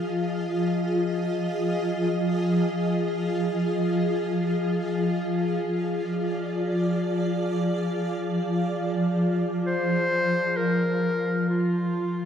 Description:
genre	ambient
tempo	free time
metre	none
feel	none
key	F dorian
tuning	A4 = 440 Hz
part	granular cloud pad	sustained chords	0.0-12.3 s	F3 to Eb5	-24 LUFS	equal	built-in reverb
part	clear clarinet	melody	9.7-12.3 s	F4 to C5	-25 LUFS	left 1 dB	tape echo
room	wet lush hall reverb, RT60 2.8 s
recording	dark, warm production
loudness	-23 LUFS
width	side -8 dB against mid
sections	0.0-10.6 A section; 10.6-12.3 B section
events	none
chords	0.0 Fm7; 10.6 Ebsus2/F (rootless)

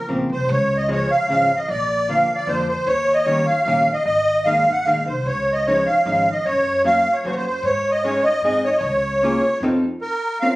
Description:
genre	musette waltz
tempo	151 BPM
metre	3/4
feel	straight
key	Db major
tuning	A4 = 436 Hz
part	musette accordion	melody	0.0-10.6 s	Bb4 to Gb5	-18 LUFS	equal	none
part	archtop guitar, miked and amplified	accompaniment	0.1-10.6 s	Db3 to Bb4	-23 LUFS	equal	none
part	upright bass	bass	0.1-9.9 s	Ab1 to Ab2	-29 LUFS	equal	none
room	moderate studio reverb, RT60 0.6 s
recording	recorded on a phone in the room, studio reverb, compression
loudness	-17 LUFS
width	side -18 dB against mid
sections	0.5-10.0 A section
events	none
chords	0.5 Db; 1.7 Bb; 2.9 Eb7; 4.1 Absus2; 5.3 Dbadd9; 6.5 Gb; 7.6 Absus4; 8.4 Ab; 8.8 Db6; 9.6 F7; 10.0 Bbmadd9

